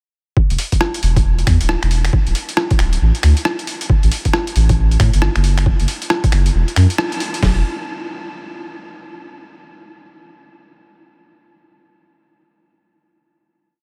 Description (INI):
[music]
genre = UK garage, two-step garage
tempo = 136 BPM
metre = 4/4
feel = swing 62% on 16ths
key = unclear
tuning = A4 = 440 Hz
[part]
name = boom bap sampler-style drum kit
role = drums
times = 0.4-7.6 s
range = hi-hat, kick drum, snare drum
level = -18 LUFS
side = equal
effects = overdrive
[part]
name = soft dub sub bass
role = bass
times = 0.5-7.6 s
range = D1 to A2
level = -16 LUFS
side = equal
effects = sidechain pumping
[part]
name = boom bap sampler-style drum kit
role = drums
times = 0.5-7.4 s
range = finger snaps, hi-hat, rim click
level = -24 LUFS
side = equal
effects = overdrive
[sound]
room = light reverb, digital ambience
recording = none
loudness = -16 LUFS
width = mono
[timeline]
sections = 0.4-7.4 drop; 7.4-9.2 final note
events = drop 0.4-7.4; band accent 7.0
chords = none